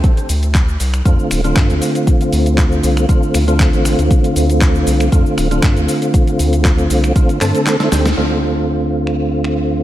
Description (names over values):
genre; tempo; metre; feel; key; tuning
deep house; 118 BPM; 4/4; swing 53% on 16ths; D minor; A4 = 440 Hz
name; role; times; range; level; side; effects
dusty soul sampler-style drum kit; drums; 0.0-9.6 s; cabasa, finger snaps, handclaps, hi-hat, snare drum; -22 LUFS; equal; none
electronic kick drum; drums; 0.0-7.3 s; none; -13 LUFS; equal; none
round analog bass; bass; 0.3-9.8 s; D1 to G2; -17 LUFS; equal; sidechain pumping
percussive tonewheel organ; stabs; 1.1-9.8 s; D3 to A4; -16 LUFS; equal; chorus vibrato, fast rotary speaker, sidechain pumping, tape echo
room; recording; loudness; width
light reverb; none; -12 LUFS; side -13 dB against mid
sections
0.0-8.2 A section; 8.2-9.8 B section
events
kick drops out 7.7-8.2; drum fill 7.7-8.2; band accent 8.0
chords
0.0 Dm7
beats
| 0.04 0.55 1.05 1.56 | 2.07 2.58 3.09 3.60 | 4.11 4.61 5.12 5.63 | 6.14 6.65 7.16 7.67 | 8.17 8.68 9.19 9.70